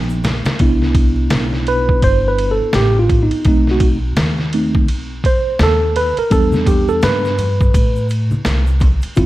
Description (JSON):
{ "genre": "hip hop, jazz-hop", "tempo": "84 BPM", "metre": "4/4", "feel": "swing 61% on 16ths", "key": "C major", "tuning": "A4 = 440 Hz", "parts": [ { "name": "mellow tine electric piano", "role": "accompaniment", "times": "0.0-9.3 s", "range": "F3 to C5", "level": "-17 LUFS", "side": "right 1 dB", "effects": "medium stereo tremolo" }, { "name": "upright bass", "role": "bass", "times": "0.0-9.3 s", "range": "G1 to A2", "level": "-18 LUFS", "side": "equal", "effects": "none" }, { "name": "egg shaker and congas", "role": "percussion", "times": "0.1-0.6, 6.3-9.3 s", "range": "none", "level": "-26 LUFS", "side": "equal", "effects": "none" }, { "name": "trip hop sampler-style drum kit", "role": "drums", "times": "0.2-9.3 s", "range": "hi-hat, kick drum, ride cymbal, snare drum", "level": "-17 LUFS", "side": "equal", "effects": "none" } ], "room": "digital ambience", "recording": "dark, warm production, vinyl crackle", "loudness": "-13 LUFS", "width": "side -16 dB against mid", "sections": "0.6-9.3 A section", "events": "drum fill 0.0-0.6; tine electric piano solo 0.6-9.3", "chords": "0.0 G7#9b13 (rootless); 0.6 Cmaj9; 3.5 B7b9; 6.3 Em7" }